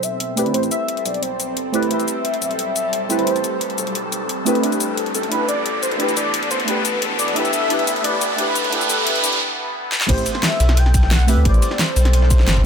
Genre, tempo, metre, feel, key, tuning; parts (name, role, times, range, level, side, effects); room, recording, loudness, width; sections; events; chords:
liquid drum and bass; 176 BPM; 4/4; straight; A minor; A4 = 440 Hz
warm velvety synth lead; melody; 0.0-12.6 s; A4 to G5; -24 LUFS; left 1 dB; chorus, ping-pong delay
deep mellow chord stab; accompaniment; 0.0-12.7 s; A3 to C5; -23 LUFS; right 1 dB; chorus, ping-pong delay
shimmering ambient pad; sustained chords; 0.0-12.7 s; E3 to A4; -27 LUFS; equal; chorus, built-in reverb, sidechain pumping
smooth synth bass; bass; 0.0-12.7 s; E1 to D2; -21 LUFS; equal; high-pass filter
pop drum kit; drums; 0.0-12.5 s; crash cymbal, hi-hat, shaker, snare drum; -23 LUFS; left 2 dB; high-pass filter on hats, high-pass filter on perc, high-pass filter on snare, high-pass filter on cymbals
riser; sound effects; 1.3-9.4 s; -25 LUFS; right 1 dB
dusty soul sampler-style drum kit; drums; 10.1-12.6 s; hi-hat, ride cymbal, snare drum; -28 LUFS; right 1 dB; high-pass filter on cymbals, high-pass filter on snare, high-pass filter on hats
electronic kick drum; drums; 10.1-12.6 s; -19 LUFS; equal
moderate plate reverb, RT60 1.9 s; high-pass filter; -16 LUFS; side -7 dB against mid
0.0-10.1 A section; 10.1-12.7 B section
build-up 0.0-10.1; filter sweep 0.0-10.1; riser 1.3-9.4; break 9.4-10.1; drum fill 9.9; drop 10.1-12.7
0.0 Am7; 4.6 G69; 9.9 Am7